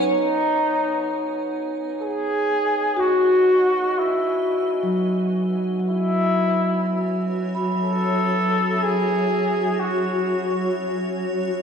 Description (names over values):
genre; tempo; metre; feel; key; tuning
ambient; 62 BPM; 3/4; straight; E major; A4 = 438 Hz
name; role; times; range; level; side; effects
granular cloud pad; sustained chords; 0.0-11.6 s; F#4 to G#5; -29 LUFS; left 1 dB; built-in reverb
vibraphone with soft mallets; arpeggios; 0.0-11.6 s; F#3 to B5; -22 LUFS; equal; tape echo
warm flugelhorn; melody; 0.1-10.8 s; D#4 to A4; -23 LUFS; equal; tape echo
room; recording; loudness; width
wet concert hall reverb, RT60 2.1 s; dark, warm production; -19 LUFS; side -6 dB against mid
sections
0.1-11.6 A section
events
fade-in on ambient pad 0.1-11.6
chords
0.1 Emaj7 (rootless); 5.9 F#7(no3)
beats
| 0.09 1.05 2.02 | 2.99 3.96 4.93 | 5.89 6.86 7.83 | 8.80 9.77 10.73